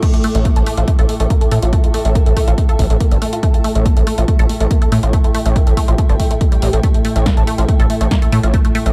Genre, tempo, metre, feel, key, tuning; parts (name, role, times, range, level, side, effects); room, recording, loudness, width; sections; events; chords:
driving peak-time techno; 141 BPM; 4/4; straight; A4 = 442 Hz
resonant blip pluck; riff; 0.0-8.9 s; G3 to A4; -24 LUFS; equal; phaser, sidechain pumping, tape echo
metallic inharmonic drone; drone; 0.0-8.9 s; A2; -29 LUFS; equal; chorus, built-in reverb, sidechain pumping
electronic kick drum; drums; 0.0-8.6 s; -16 LUFS; equal
punchy analog drum machine; drums; 0.0-8.9 s; crash cymbal, hi-hat, snare drum; -30 LUFS; equal; sidechain pumping on hats, sidechain pumping on cymbals
granular cloud pad; texture; 0.0-8.9 s; A4 to D6; -30 LUFS; equal; built-in reverb, sidechain pumping
gritty driven synth bass; bass; 0.3-8.9 s; G1 to A2; -18 LUFS; equal; sidechain pumping
digital ambience; -14 LUFS; mono
0.0-8.9 A section
filter sweep on synth arpeggio sound 0.0-8.9
0.0 A5